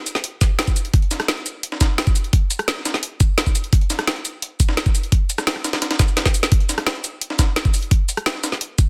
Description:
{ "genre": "drum and bass", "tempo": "172 BPM", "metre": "4/4", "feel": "straight", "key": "none", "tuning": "none", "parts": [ { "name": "breakbeat sampler-style drum kit", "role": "drums", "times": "0.1-8.9 s", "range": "hi-hat, snare drum", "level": "-30 LUFS", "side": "equal", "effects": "high-pass filter on hats, high-pass filter on snare" }, { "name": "drum and bass drum kit", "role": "drums", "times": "0.1-8.9 s", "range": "hi-hat, rim click, shaker, snare drum", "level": "-24 LUFS", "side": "equal", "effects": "overdrive" }, { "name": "electronic kick drum", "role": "drums", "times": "0.4-8.9 s", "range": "none", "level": "-19 LUFS", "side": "equal", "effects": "overdrive" } ], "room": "little or no reverb", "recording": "dense, heavily limited modern master", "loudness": "-20 LUFS", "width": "mono", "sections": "0.0-8.9 A section", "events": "drum fill 6.2-6.5", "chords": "none" }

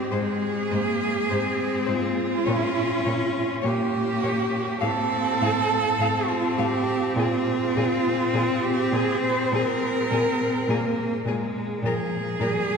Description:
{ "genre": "classical, lyrical piece for cello ensemble", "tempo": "51 BPM", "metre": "4/4", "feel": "rubato", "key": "unclear", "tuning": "A4 = 436 Hz", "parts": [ { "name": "rich cello", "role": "second line", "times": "0.0-12.8 s", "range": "F4 to C5", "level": "-25 LUFS", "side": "right 2 dB", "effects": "none" }, { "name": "clear cello", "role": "accompaniment", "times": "0.0-12.8 s", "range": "F3 to Db4", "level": "-27 LUFS", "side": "left 1 dB", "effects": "none" }, { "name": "rich cello", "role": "melody", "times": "0.1-12.5 s", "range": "Ab4 to F5", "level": "-33 LUFS", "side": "left 5 dB", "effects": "none" }, { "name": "rich cello", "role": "bass", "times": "0.1-12.5 s", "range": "Ab2 to Bb2", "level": "-30 LUFS", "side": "equal", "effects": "none" } ], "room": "wet cathedral reverb, RT60 4.6 s", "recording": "minimal, uncompressed stereo recording", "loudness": "-22 LUFS", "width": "side -5 dB against mid", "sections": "0.0-12.8 A section", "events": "none", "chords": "0.0 Ab; 2.5 Bbm; 4.8 F/A; 7.2 Bb5; 11.8 Bb7(no3) (rootless)" }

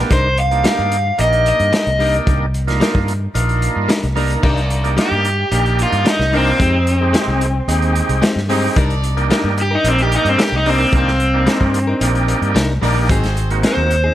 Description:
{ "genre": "straight-eighth soul blues", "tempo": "111 BPM", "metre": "4/4", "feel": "straight", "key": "C minor", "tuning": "A4 = 444 Hz", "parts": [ { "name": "overdriven tonewheel organ", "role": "accompaniment", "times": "0.0-14.0 s", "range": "Ab3 to Bb4", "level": "-22 LUFS", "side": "right 2 dB", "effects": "slow rotary speaker" }, { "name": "fingered electric bass", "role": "bass", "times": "0.0-14.1 s", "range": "Ab1 to G2", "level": "-18 LUFS", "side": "equal", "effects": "none" }, { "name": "overdriven semi-hollow guitar", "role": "melody", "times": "0.1-14.1 s", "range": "C4 to F5", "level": "-17 LUFS", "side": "equal", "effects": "none" }, { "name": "direct-recorded clean electric guitar", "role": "stabs", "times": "0.1-14.1 s", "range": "Gb3 to Bb4", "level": "-24 LUFS", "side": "left 3 dB", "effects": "analog delay" }, { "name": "crunchy breakbeat drum kit", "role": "drums", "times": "0.1-14.0 s", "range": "crash cymbal, hi-hat, kick drum, snare drum", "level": "-20 LUFS", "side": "equal", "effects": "none" }, { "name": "bright horn section", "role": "sustained chords", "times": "4.4-13.6 s", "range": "C4 to F5", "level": "-28 LUFS", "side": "equal", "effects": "none" } ], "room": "light reverb", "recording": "none", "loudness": "-13 LUFS", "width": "side -12 dB against mid", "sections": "0.0-4.4 A section; 4.4-14.1 B section", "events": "overdriven electric guitar solo 4.4-14.1", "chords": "0.1 Cm9; 6.6 Fm9; 8.8 Cm9; 13.1 Ab7" }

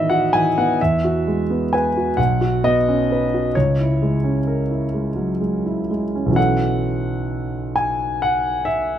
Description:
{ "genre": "classical, impressionist solo piano", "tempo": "43 BPM (dotted quarters)", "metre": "6/8", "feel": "rubato", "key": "unclear", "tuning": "A4 = 439 Hz", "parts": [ { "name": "warm concert grand piano", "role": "solo", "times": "0.0-9.0 s", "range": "B1 to G#5", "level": "-17 LUFS", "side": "equal", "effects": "none" } ], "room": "moderate recital hall reverb, RT60 1.6 s", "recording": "close, detailed microphones", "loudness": "-17 LUFS", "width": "side -10 dB against mid", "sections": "0.0-6.4 A section; 6.4-9.0 B section", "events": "none", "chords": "0.0 A69; 0.8 Eadd9; 2.2 Badd9; 3.5 C#m6; 6.4 B9sus4" }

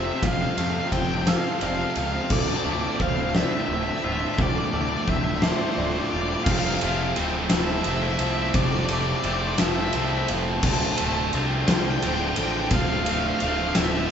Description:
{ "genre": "post-rock", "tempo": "58 BPM (dotted quarters)", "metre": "6/8", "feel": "straight", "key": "D minor", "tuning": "A4 = 440 Hz", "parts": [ { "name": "cranked stack guitar", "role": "melody", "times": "0.0-14.1 s", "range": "C5 to A5", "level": "-29 LUFS", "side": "left 1 dB", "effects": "overdrive" }, { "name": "shimmering ambient pad", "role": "sustained chords", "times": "0.0-14.1 s", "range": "F3 to A5", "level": "-36 LUFS", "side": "equal", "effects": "none" }, { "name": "twangy electric guitar", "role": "arpeggios", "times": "0.0-14.1 s", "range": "D2 to F4", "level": "-32 LUFS", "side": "left 1 dB", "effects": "none" }, { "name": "distorted electric guitar", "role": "riff", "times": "0.0-14.1 s", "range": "D2 to F4", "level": "-28 LUFS", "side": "right 1 dB", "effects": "distortion" }, { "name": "fuzz picked electric bass", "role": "bass", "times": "0.0-14.1 s", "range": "D1 to F2", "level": "-30 LUFS", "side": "equal", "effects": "overdrive" }, { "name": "felt-muted upright piano", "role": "arpeggios", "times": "0.2-6.5 s", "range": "A4 to E6", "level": "-36 LUFS", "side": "right 4 dB", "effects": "none" }, { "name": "big rock drum kit", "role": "drums", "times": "0.2-13.9 s", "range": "crash cymbal, kick drum, ride cymbal, snare drum", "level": "-26 LUFS", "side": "equal", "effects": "none" } ], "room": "wet large studio reverb, RT60 1.2 s", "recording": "band playing live in one room, nothing above 7.8 kHz", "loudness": "-21 LUFS", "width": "side -8 dB against mid", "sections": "0.0-6.5 A section; 6.5-14.1 B section", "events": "build-up 0.0-6.5", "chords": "0.0 Fmaj7; 2.3 Dm7" }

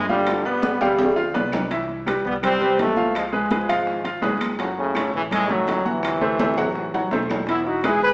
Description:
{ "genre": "latin, salsa", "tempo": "166 BPM", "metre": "4/4", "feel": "straight", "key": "unclear", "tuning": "A4 = 440 Hz", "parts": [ { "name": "brilliant trombone section", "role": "melody", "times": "0.0-8.1 s", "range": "A2 to B4", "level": "-22 LUFS", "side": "equal", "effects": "none" }, { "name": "clear grand piano", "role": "accompaniment", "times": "0.0-8.1 s", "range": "E3 to F#5", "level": "-23 LUFS", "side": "equal", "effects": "none" }, { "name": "upright bass", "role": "bass", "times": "0.0-8.1 s", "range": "E1 to G2", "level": "-37 LUFS", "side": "equal", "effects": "none" }, { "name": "congas", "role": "percussion", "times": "0.1-8.1 s", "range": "none", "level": "-29 LUFS", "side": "equal", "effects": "none" }, { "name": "bongos", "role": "percussion", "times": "0.3-8.0 s", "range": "none", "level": "-34 LUFS", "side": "left 1 dB", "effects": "none" }, { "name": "claves", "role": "percussion", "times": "0.3-8.0 s", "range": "none", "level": "-40 LUFS", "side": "left 1 dB", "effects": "none" }, { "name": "timbales", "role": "percussion", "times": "0.3-8.0 s", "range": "none", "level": "-28 LUFS", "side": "equal", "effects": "none" } ], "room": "wet large studio reverb, RT60 1.1 s", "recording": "band playing live in one room, vinyl crackle, small speaker sound", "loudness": "-19 LUFS", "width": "side -25 dB against mid", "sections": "0.0-7.5 A section", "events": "drum fill 0.3-1.7, 6.4-7.5", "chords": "0.3 G7; 1.7 Cmaj7; 3.2 C#7; 4.6 F#m7; 6.0 D9; 7.5 E" }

